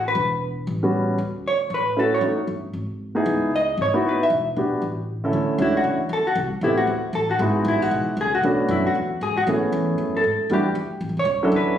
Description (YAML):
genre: jazz, small-group swing and bop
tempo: 232 BPM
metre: 4/4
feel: swing 60% on 8ths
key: unclear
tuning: A4 = 441 Hz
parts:
  - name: vintage hollow-body jazz guitar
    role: melody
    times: 0.0-11.8 s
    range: E4 to E5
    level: -22 LUFS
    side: equal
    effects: none
  - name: upright bass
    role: bass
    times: 0.0-11.8 s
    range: E1 to A2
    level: -28 LUFS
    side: equal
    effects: none
  - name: warm upright piano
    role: accompaniment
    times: 0.8-11.8 s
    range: D3 to A4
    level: -21 LUFS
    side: equal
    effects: none
room: moderate studio reverb, RT60 0.6 s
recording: recorded on a phone in the room, studio reverb, compression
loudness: -20 LUFS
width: side -10 dB against mid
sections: 0.0-5.3 A section; 5.3-11.8 B section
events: none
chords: 0.2 E5; 0.7 A13; 1.2 Dmaj9; 2.2 D#m7b5; 2.7 G#5; 3.3 C#m11; 4.3 Em7; 4.8 A; 5.3 Dmaj7; 6.4 Am7; 6.9 D; 7.4 Emaj7; 8.4 Bm7; 9.0 E; 9.5 Amaj7; 10.5 Em7; 11.0 A7